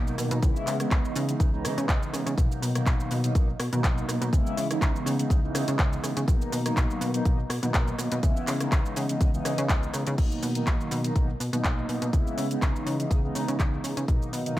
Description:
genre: filtered disco house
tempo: 123 BPM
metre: 4/4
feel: swing 53% on 16ths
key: B major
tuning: A4 = 442 Hz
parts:
  - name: mellow synth brass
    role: accompaniment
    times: 0.0-14.6 s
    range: B2 to E4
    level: -30 LUFS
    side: equal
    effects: chorus, phaser, sidechain pumping, low-pass filter, analog delay
  - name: plucky analog bass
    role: bass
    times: 0.0-14.6 s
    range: B1 to C#3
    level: -30 LUFS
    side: equal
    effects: sidechain pumping, low-pass filter
  - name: house drum kit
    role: drums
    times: 0.1-14.6 s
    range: cabasa, crash cymbal, handclaps, hi-hat, rim click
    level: -33 LUFS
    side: equal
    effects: studio reverb
  - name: electronic kick drum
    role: drums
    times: 0.4-14.6 s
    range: none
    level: -24 LUFS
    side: equal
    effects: studio reverb
room: light reverb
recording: echo-heavy mix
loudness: -24 LUFS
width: side -15 dB against mid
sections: 0.0-10.2 A section; 10.2-14.6 B section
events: drop 0.0-10.2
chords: 0.4 C#m9; 2.4 Bmaj7; 4.3 C#m9; 6.3 Bmaj7; 8.2 C#m9; 10.2 Bmaj7; 12.1 C#m9; 14.1 Bmaj7

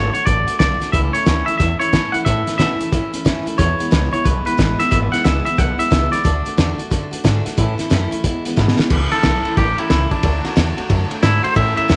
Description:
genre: rockabilly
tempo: 181 BPM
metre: 4/4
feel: swing 64% on 8ths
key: A major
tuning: A4 = 440 Hz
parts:
  - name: twangy electric guitar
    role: melody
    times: 0.0-7.1, 9.1-12.0 s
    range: D4 to F#5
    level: -22 LUFS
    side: equal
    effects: tape echo
  - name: picked steel-string acoustic guitar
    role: accompaniment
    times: 0.0-12.0 s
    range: E2 to F#4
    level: -26 LUFS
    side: equal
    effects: none
  - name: upright bass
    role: bass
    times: 0.0-12.0 s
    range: G#1 to B2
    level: -22 LUFS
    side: equal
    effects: none
  - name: cloth-damped thuddy drum kit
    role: drums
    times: 0.1-12.0 s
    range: crash cymbal, hi-hat, kick drum, ride cymbal, snare drum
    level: -21 LUFS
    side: equal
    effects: none
room: light reverb, small room ambience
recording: nothing above 10.8 kHz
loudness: -17 LUFS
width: mono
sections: 0.0-8.9 A section; 8.9-12.0 B section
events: drum fill 8.6-8.9; clean electric guitar solo 8.9-12.0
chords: 0.0 D; 0.9 A; 3.6 E; 6.2 D; 7.6 A; 8.2 E; 8.9 A; 10.2 D

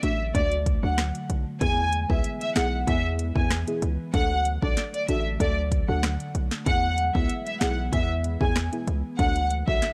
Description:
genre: dancehall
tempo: 95 BPM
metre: 4/4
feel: straight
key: unclear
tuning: A4 = 439 Hz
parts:
  - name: warm studio violin section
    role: melody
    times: 0.0-9.8 s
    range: D5 to G#5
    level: -30 LUFS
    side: equal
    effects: analog delay
  - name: deep mellow chord stab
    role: accompaniment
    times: 0.0-9.9 s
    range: A3 to A4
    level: -34 LUFS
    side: equal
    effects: chorus, phaser
  - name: glassy FM pad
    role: sustained chords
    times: 0.0-9.9 s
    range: D3 to B3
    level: -40 LUFS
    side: equal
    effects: ensemble chorus, built-in reverb, sidechain pumping
  - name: hard-hitting 808-style bass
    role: bass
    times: 0.0-9.8 s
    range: A1 to E2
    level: -29 LUFS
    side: equal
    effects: none
  - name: afro-pop drum kit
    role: drums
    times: 0.0-9.9 s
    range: finger snaps, hi-hat, kick drum, rim click, snare drum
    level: -29 LUFS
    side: equal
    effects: none
room: little or no reverb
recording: dry, gritty hardware recording, cassette tape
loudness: -25 LUFS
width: mono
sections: 0.0-9.9 A section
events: none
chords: 0.0 D; 1.6 E; 4.1 D; 6.7 E; 9.2 D

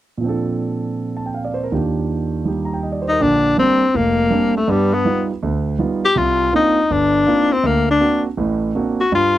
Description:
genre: jazz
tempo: 162 BPM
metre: 4/4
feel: swing 63% on 8ths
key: Bb major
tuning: A4 = 440 Hz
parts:
  - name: warm concert grand piano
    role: accompaniment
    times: 0.2-9.4 s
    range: F1 to Bb5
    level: -19 LUFS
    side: right 3 dB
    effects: none
  - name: warm tenor saxophone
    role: melody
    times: 3.1-9.4 s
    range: G3 to G4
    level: -15 LUFS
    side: left 3 dB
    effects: none
room: light reverb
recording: dry, close 1970s-style studio recording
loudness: -15 LUFS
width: side -14 dB against mid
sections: 0.2-3.2 A section; 3.2-9.4 B section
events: none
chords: 0.2 Bbmaj9; 1.7 Ebmaj7; 3.2 Bb69; 4.7 G7b13; 6.2 Cm11; 7.6 D7b13

